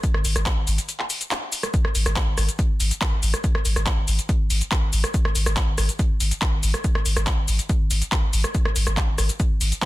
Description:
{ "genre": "driving peak-time techno", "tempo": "141 BPM", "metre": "4/4", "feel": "straight", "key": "unclear", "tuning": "A4 = 440 Hz", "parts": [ { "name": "electronic kick drum", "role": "drums", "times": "0.0-9.9 s", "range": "none", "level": "-22 LUFS", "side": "equal", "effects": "overdrive" }, { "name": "techno drum kit", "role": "drums", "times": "0.0-9.9 s", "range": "handclaps, hi-hat, rim click, shaker", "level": "-25 LUFS", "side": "equal", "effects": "soft clipping on snare" }, { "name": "warm sub bass", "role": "bass", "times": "0.1-9.7 s", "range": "G#1", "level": "-24 LUFS", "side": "equal", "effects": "overdrive, sidechain pumping, low-pass filter" } ], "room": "little or no reverb", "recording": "dense, heavily limited modern master", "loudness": "-20 LUFS", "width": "side -17 dB against mid", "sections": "0.0-9.9 A section", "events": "break 0.9-1.7", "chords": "none", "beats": "| 0.04 0.46 0.89 1.31 | 1.74 2.16 2.59 3.01 | 3.44 3.86 4.29 4.72 | 5.14 5.57 5.99 6.42 | 6.84 7.27 7.69 8.12 | 8.54 8.97 9.40 9.82" }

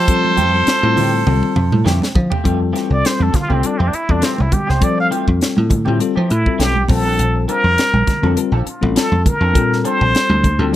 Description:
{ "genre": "electric jazz fusion", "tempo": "101 BPM", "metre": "4/4", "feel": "swing 55% on 16ths", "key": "F major", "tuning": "A4 = 444 Hz", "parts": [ { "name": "trumpet with plunger mute", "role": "melody", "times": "0.0-10.7 s", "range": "C4 to F5", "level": "-18 LUFS", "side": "equal", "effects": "slapback echo" }, { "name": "biting overdriven guitar", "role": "second line", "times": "0.0-1.9 s", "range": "A4", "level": "-23 LUFS", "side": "right 6 dB", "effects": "none" }, { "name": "clean electric guitar", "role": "stabs", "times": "0.0-10.8 s", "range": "E3 to A4", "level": "-27 LUFS", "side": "right 2 dB", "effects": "analog chorus" }, { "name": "dry thumbed slap bass", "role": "bass", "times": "0.0-10.7 s", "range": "A1 to F3", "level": "-17 LUFS", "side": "equal", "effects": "none" }, { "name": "bell-like tine electric piano", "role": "accompaniment", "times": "0.1-10.8 s", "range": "G3 to G5", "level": "-21 LUFS", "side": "left 7 dB", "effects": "none" }, { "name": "tight funk drum kit", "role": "drums", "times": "0.1-10.6 s", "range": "hi-hat, kick drum, snare drum, toms", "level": "-19 LUFS", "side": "equal", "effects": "none" }, { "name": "congas", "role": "percussion", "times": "0.2-10.8 s", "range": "none", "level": "-22 LUFS", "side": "right 3 dB", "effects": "none" } ], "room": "little or no reverb", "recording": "none", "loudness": "-13 LUFS", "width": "side -13 dB against mid", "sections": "0.0-2.4 A section; 2.4-10.8 B section", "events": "drum fill 1.3-2.4; tine electric piano fill 1.6-2.4; muted trumpet solo 2.4-10.8", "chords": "0.0 Fmaj9; 6.9 Bbmaj9", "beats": "| 0.07 0.67 1.26 1.85 | 2.44 3.04 3.63 4.22 | 4.81 5.41 6.00 6.59 | 7.18 7.78 8.37 8.96 | 9.55 10.15 10.74" }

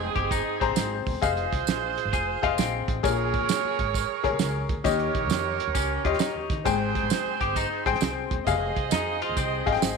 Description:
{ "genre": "uptempo 1960s-style soul", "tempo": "133 BPM", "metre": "4/4", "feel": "swing 66% on 8ths", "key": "Ab major", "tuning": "A4 = 440 Hz", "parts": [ { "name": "bright saxophone section", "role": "second line", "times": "0.0-10.0 s", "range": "C4 to Eb5", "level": "-30 LUFS", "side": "right 14 dB", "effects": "none" }, { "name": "bright upright piano", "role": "accompaniment", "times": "0.0-10.0 s", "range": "Ab2 to Bb5", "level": "-28 LUFS", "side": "left 11 dB", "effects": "none" }, { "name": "upright bass", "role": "bass", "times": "0.0-10.0 s", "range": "Fb1 to Eb3", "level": "-32 LUFS", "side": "right 1 dB", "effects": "tube saturation" }, { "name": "semi-hollow electric guitar", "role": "riff", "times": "0.2-3.0, 5.7-10.0 s", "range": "C4 to Ab4", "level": "-31 LUFS", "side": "left 12 dB", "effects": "none" }, { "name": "cloth-damped thuddy drum kit", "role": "drums", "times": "0.2-10.0 s", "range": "hi-hat, kick drum, snare drum", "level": "-29 LUFS", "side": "right 4 dB", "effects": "none" }, { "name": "tambourine", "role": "percussion", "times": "0.3-10.0 s", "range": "none", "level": "-36 LUFS", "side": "right 15 dB", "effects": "none" } ], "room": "light reverb, small room ambience", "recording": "1960s-style stereo with parts hard left and right", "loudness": "-23 LUFS", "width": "side -4 dB against mid", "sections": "0.0-10.0 A section", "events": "none", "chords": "0.0 Abmaj7; 1.2 Fm7; 3.0 Bbm7; 4.8 Eb7; 6.7 Abmaj7; 8.5 Fm7", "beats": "0.31 0.77 | 1.22 1.68 2.13 2.58 | 3.04 3.49 3.94 4.40 | 4.85 5.30 5.75 6.21 | 6.66 7.11 7.56 8.02 | 8.47 8.92 9.37 9.82" }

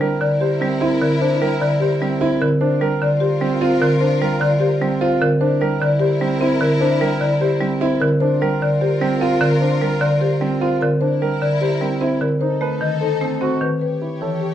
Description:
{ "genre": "classical, minimalist pattern music", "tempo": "300 BPM (eighths)", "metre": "7/8", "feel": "straight", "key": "unclear", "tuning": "A4 = 440 Hz", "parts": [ { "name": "marimba with soft mallets", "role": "melody", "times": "0.0-14.5 s", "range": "G4 to D#5", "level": "-21 LUFS", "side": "left 4 dB", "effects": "none" }, { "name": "marimba with hard mallets", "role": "accompaniment", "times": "0.0-14.5 s", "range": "D3 to C4", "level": "-20 LUFS", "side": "right 1 dB", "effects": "none" }, { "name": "rich symphonic violin section", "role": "sustained chords", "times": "0.0-14.5 s", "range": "D#4 to C#5", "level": "-27 LUFS", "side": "left 3 dB", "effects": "none" }, { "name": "warm concert grand piano", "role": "arpeggios", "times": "0.0-14.5 s", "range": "C4 to C5", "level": "-22 LUFS", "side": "right 6 dB", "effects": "none" } ], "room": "moderate large studio reverb, RT60 0.8 s", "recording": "dark, warm production", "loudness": "-16 LUFS", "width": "side -11 dB against mid", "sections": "0.0-13.8 A section", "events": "none", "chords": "0.0 C7; 2.6 Gm7; 5.4 C7; 8.2 Gm7; 11.0 C7; 12.4 B7b9; 13.8 Em6", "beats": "0.01 0.21 0.41 0.61 0.81 1.01 | 1.21 1.41 1.61 1.81 2.01 2.21 2.41 | 2.61 2.81 3.01 3.21 3.41 3.61 3.81 | 4.01 4.21 4.41 4.61 4.81 5.01 5.21 | 5.41 5.61 5.81 6.01 6.21 6.41 6.61 | 6.81 7.01 7.21 7.41 7.61 7.81 8.01 | 8.21 8.41 8.61 8.81 9.01 9.21 9.41 | 9.61 9.81 10.01 10.21 10.41 10.61 10.81 | 11.01 11.21 11.41 11.61 11.81 12.01 12.21 | 12.41 12.61 12.81 13.01 13.21 13.41 13.61 | 13.81 14.01 14.21 14.41" }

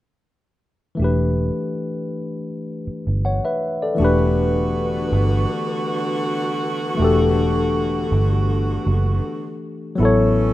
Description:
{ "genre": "R&B", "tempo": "80 BPM", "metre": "4/4", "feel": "swing 53% on 16ths", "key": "E dorian", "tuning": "A4 = 440 Hz", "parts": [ { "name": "tine electric piano", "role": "accompaniment", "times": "1.0-10.5 s", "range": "E3 to F#5", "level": "-21 LUFS", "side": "left 2 dB", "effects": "none" }, { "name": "vintage muted fingered electric bass", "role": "bass", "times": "1.0-10.5 s", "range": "E1 to A1", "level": "-20 LUFS", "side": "right 1 dB", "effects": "none" }, { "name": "clear saxophone section", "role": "stabs", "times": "4.0-10.5 s", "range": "D3 to A4", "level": "-25 LUFS", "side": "right 1 dB", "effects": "slapback echo" } ], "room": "small room ambience", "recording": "rough home demo mix", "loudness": "-18 LUFS", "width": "side -15 dB against mid", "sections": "1.0-4.0 A section; 4.0-10.5 B section", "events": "none", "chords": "1.0 Em7; 4.0 Em9; 10.0 Aadd9", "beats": "| 0.98 1.74 2.48 3.23 | 3.98 4.74 5.49 6.24 | 6.99 7.74 8.48 9.23 | 9.98" }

